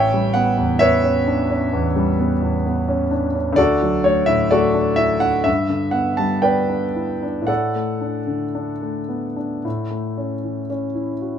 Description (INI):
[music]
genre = classical, romantic character piece for solo piano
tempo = 54-66 BPM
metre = 4/4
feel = rubato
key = D major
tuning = A4 = 440 Hz
[part]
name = warm concert grand piano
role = solo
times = 0.0-11.4 s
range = A1 to A5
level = -17 LUFS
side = equal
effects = none
[sound]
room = light reverb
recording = minimal, uncompressed stereo recording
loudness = -17 LUFS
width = side -8 dB against mid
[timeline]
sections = 0.0-11.4 A section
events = none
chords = 0.0 A9; 3.6 D; 5.5 G; 7.5 D/A; 9.6 A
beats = 0.80 1.71 2.64 | 3.59 4.54 5.47 6.44 | 7.49 8.55 9.65 10.71